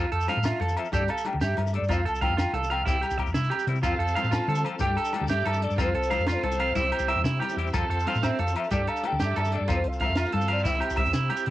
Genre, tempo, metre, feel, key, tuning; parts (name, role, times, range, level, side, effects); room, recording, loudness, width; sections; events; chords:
highlife guitar band; 123 BPM (dotted quarters); 12/8; straight; F major; A4 = 440 Hz
clean electric guitar; accompaniment; 0.0-11.5 s; F3 to A4; -34 LUFS; left 6 dB; cassette tape
electric guitar at the edge of break-up; arpeggios; 0.0-11.4 s; C4 to F5; -28 LUFS; right 4 dB; spring reverb, cassette tape
hollow-body short-scale fingered electric bass; bass; 0.0-11.5 s; C2 to D3; -28 LUFS; equal
congas; percussion; 0.0-11.4 s; -38 LUFS; left 6 dB
compact cocktail drum kit; drums; 0.1-11.5 s; hi-hat, kick drum, snare drum; -32 LUFS; equal; cassette tape
shekere; percussion; 0.2-11.4 s; -38 LUFS; left 2 dB
agogo bells; percussion; 0.3-11.5 s; -38 LUFS; left 5 dB
mellow alto ocarina; melody; 0.4-11.0 s; C5 to A5; -31 LUFS; left 1 dB; cassette tape
bright tonewheel organ; sustained chords; 3.8-11.5 s; C4 to A4; -37 LUFS; left 1 dB; slow rotary speaker, chorus vibrato, cassette tape
light reverb; home recording on cassette; -23 LUFS; side -15 dB against mid
0.0-11.5 A section
drum fill 3.0-3.8
0.0 F; 0.9 Gsus2; 1.9 F; 2.9 C; 3.8 F; 4.8 Gsus2; 5.8 F; 6.8 C; 7.7 F; 8.7 Gsus2; 9.7 F; 10.7 C